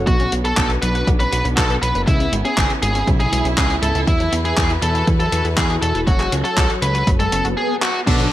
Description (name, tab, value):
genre	italo disco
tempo	120 BPM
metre	4/4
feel	straight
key	F# minor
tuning	A4 = 438 Hz
part	dark studio string section	sustained chords	0.0-8.3 s	E3 to C#5	-27 LUFS	equal	none
part	chorused polysynth	stabs	0.0, 8.1-8.2 s	F#4 to F#5	-30 LUFS	right 2 dB	phaser, tape echo
part	fat analog bass	bass	0.0-8.3 s	E1 to E2	-21 LUFS	equal	tube saturation
part	smooth overdriven lead guitar	melody	0.1-8.3 s	D3 to B4	-21 LUFS	equal	tape echo
part	analog pluck	arpeggios	0.1-8.3 s	G#2 to B4	-27 LUFS	left 1 dB	chorus, tape echo
part	electronic kick drum	drums	0.1-8.2 s	none	-19 LUFS	equal	none
part	gated 80s digital drum machine	drums	0.1-8.3 s	crash cymbal, handclaps, hi-hat	-24 LUFS	left 1 dB	gated reverb
part	swell and downlifter	sound effects	7.2-8.3 s	none	-25 LUFS	equal	none
room	light reverb, digital ambience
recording	none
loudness	-15 LUFS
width	side -14 dB against mid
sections	0.0-8.1 A section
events	swell 7.2-8.1; drum fill 7.8; band accent 7.8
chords	0.1 Bm; 2.1 C#m7; 4.1 Esus2; 6.1 F#m